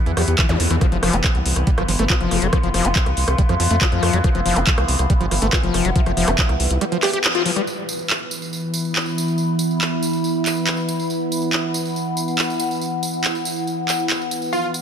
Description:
psychedelic trance; 140 BPM; 4/4; straight; A4 = 441 Hz
overtone-sweeping drone; sustained chords; 0.0-14.8 s; E3 to B3; -25 LUFS; right 1 dB; chorus, built-in reverb, sidechain pumping
warbly tape-like pad; texture; 0.2-14.5 s; B3 to C6; -27 LUFS; left 2 dB; chorus, built-in reverb, sidechain pumping
screaming distorted acid line; riff; 0.1-7.6 s; E3 to G4; -23 LUFS; moving between left 7 dB and right 6 dB; distortion, chorus, auto-pan, sidechain pumping, dub echo
round analog bass; bass; 0.1-6.8 s; F1 to F2; -20 LUFS; equal
drum and bass drum kit; drums; 0.1-14.2 s; handclaps, hi-hat, rim click; -22 LUFS; right 1 dB
formant-sweep wobble bass; second line; 0.2-2.5, 5.4-7.2 s; A3 to G4; -33 LUFS; left 2 dB
electronic kick drum; drums; 0.4-6.5 s; -18 LUFS; equal
zap; sound effects; 0.5-0.6 s; -29 LUFS; right 1 dB
tambourine; percussion; 7.7-14.8 s; -30 LUFS; right 4 dB
dense compressed supersaw; melody; 14.5-14.7 s; F4; -20 LUFS; right 1 dB; phaser, cassette tape, sidechain pumping
moderate lush hall reverb, RT60 2.6 s; -17 LUFS; side -8 dB against mid
0.0-7.7 A section; 7.7-14.8 B section
band accent 7.2
0.0 E5; 0.8 F5; 7.7 E5

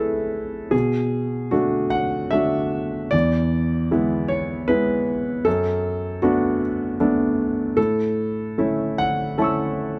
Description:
neoclassical minimalist piano; 77 BPM; 3/4; rubato; A major; A4 = 437 Hz
warm concert grand piano; solo; 0.0-10.0 s; E2 to E6; -22 LUFS; equal
light reverb; close, detailed microphones; -22 LUFS; mono
0.0-10.0 A section
0.0 Amaj7; 0.7 Bm7; 3.1 E; 5.5 D6/F#; 7.8 A

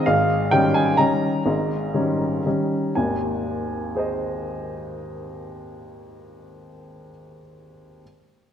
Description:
classical, piano waltz; 113-136 BPM; 3/4; rubato; Ab major; A4 = 439 Hz
clear upright piano; solo; 0.0-8.0 s; Ab1 to Bb5; -20 LUFS; equal
wet concert hall reverb, RT60 2.2 s; dark, warm production; -20 LUFS; side -9 dB against mid
0.0-3.0 A section; 3.0-5.9 B section
slowing down 0.0-3.0
0.1 Eb7/Ab; 3.0 Ab

